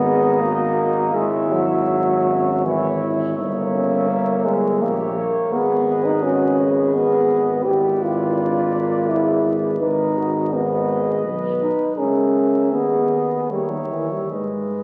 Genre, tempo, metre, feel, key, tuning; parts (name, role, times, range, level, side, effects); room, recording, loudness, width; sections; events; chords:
classical, hymn-like piece for brass band; 69-86 BPM; 3/4; rubato; G# minor; A4 = 438 Hz
mellow cornet; melody; 0.0-14.8 s; D5 to E5; -33 LUFS; equal
mellow French horn section; second line; 0.0-14.8 s; C#4 to B4; -26 LUFS; equal
clear euphonium; accompaniment; 0.0-14.8 s; D#3 to G4; -23 LUFS; equal
warm trombone section; accompaniment; 0.0-14.8 s; D#4 to C#5; -30 LUFS; equal
warm tuba; bass; 0.0-14.8 s; G1 to G#2; -27 LUFS; equal
wet scoring stage reverb, RT60 1.6 s; very old 78 rpm record, vinyl crackle; -20 LUFS; mono
0.0-14.8 A section
0.0 G#m; 1.1 E69/G#; 3.4 Gdim7; 5.5 G#m; 7.7 G#dim7; 9.8 G#m; 12.0 C#m; 12.7 G#m/D#; 13.5 D#5; 14.3 G#m